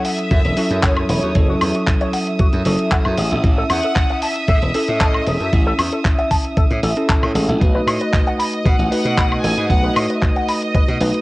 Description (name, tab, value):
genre	nu-disco, nu disco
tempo	115 BPM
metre	4/4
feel	straight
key	unclear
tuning	A4 = 440 Hz
part	bell-like tine electric piano	accompaniment	0.0-11.2 s	F#3 to B4	-22 LUFS	equal	sidechain pumping, cassette tape
part	clear studio violin section	sustained chords	0.0-11.2 s	D#5 to D#6	-26 LUFS	right 1 dB	sidechain pumping, cassette tape
part	dusty soul sampler-style drum kit	drums	0.0-11.2 s	handclaps, hi-hat, woodblock	-24 LUFS	equal	cassette tape
part	rich chamber violin section	melody	0.1-11.2 s	C#5 to G#5	-25 LUFS	equal	cassette tape, tape echo
part	electric guitar with an envelope filter	riff	0.1-11.1 s	E4 to B5	-25 LUFS	left 1 dB	lush chorus, cassette tape
part	glassy slap bass	bass	0.3-11.1 s	E1 to B2	-21 LUFS	equal	tube saturation
part	electronic kick drum	drums	0.3-10.9 s	none	-17 LUFS	equal	cassette tape
room	light reverb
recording	home recording on cassette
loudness	-15 LUFS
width	side -20 dB against mid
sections	0.0-11.2 A section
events	none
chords	0.0 F#m7; 3.2 Amaj7; 7.6 B7